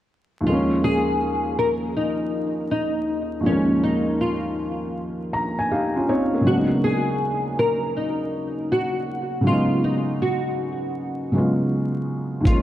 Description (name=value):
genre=lo-fi hip hop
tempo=80 BPM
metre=4/4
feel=swing 66% on 16ths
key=unclear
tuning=A4 = 440 Hz
part: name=felt-muted upright piano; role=accompaniment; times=0.4-12.6 s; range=Eb2 to Bb5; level=-22 LUFS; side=equal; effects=low-pass filter
part: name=nylon-string guitar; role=melody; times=0.5-12.6 s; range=Db4 to Bb4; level=-24 LUFS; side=left 1 dB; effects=analog chorus, low-pass filter, analog delay
part: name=dusty soul sampler-style drum kit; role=drums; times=12.5-12.6 s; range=hi-hat, kick drum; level=-17 LUFS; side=equal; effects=none
room=wet plate reverb, RT60 2.9 s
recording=dreamy mix soaked in reverb, vinyl crackle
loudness=-20 LUFS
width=side -12 dB against mid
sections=0.5-12.6 A section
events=felt piano fill 5.0-6.5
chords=0.5 Eb9sus4; 6.5 Db9sus4